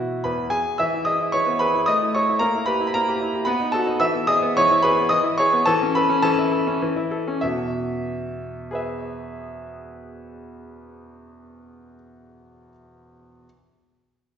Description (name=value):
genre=classical-period piano sonatina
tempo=94-113 BPM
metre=3/4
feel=straight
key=E major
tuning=A4 = 437 Hz
part: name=clear concert grand piano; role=solo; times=0.0-13.5 s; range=E2 to E6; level=-20 LUFS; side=equal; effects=none
room=wet recital hall reverb, RT60 1.4 s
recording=recorded in a church or concert hall, nothing above 7.6 kHz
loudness=-19 LUFS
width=side -8 dB against mid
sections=0.8-7.4 A section; 7.4-11.2 B section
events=slowing down 3.2-7.4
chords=0.0 E; 1.9 A; 2.4 Edim/Bb; 3.5 B7; 4.0 E; 5.6 A/E; 7.4 E